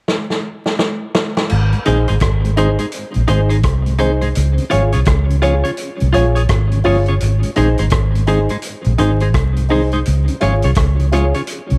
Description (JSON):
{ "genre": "roots reggae", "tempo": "84 BPM", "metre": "4/4", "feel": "swing 62% on 16ths", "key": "Ab major", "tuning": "A4 = 439 Hz", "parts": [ { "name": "vintage drum kit", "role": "drums", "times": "0.1-11.8 s", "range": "crash cymbal, hi-hat, kick drum, rim click, snare drum", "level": "-22 LUFS", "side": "equal", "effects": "none" }, { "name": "vintage muted fingered electric bass", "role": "bass", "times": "1.5-11.8 s", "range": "G1 to Db2", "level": "-17 LUFS", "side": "equal", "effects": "none" }, { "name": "mellow tonewheel organ", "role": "accompaniment", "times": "1.7-11.8 s", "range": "Ab2 to Db4", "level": "-26 LUFS", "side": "equal", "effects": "slow rotary speaker, tape echo" }, { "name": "clean electric guitar", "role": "accompaniment", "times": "1.9-11.4 s", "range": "Eb4 to Db5", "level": "-25 LUFS", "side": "equal", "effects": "lush chorus, tape echo" }, { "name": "dark upright piano", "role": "stabs", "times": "1.9-11.3 s", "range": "Eb4 to Db5", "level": "-24 LUFS", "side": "equal", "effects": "none" } ], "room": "light reverb, studio reverb", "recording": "dark, warm production, vinyl crackle", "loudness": "-16 LUFS", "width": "mono", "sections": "0.0-1.5 A section; 1.5-11.8 B section", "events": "drum fill 0.1-1.5; break 11.5-11.8", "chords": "0.0 N.C.; 1.5 Ab; 4.4 Db; 7.2 Ab; 10.1 Db", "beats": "0.07 0.79 | 1.50 2.21 2.93 3.64 | 4.36 5.07 5.78 6.50 | 7.21 7.92 8.63 9.35 | 10.06 10.77 11.48" }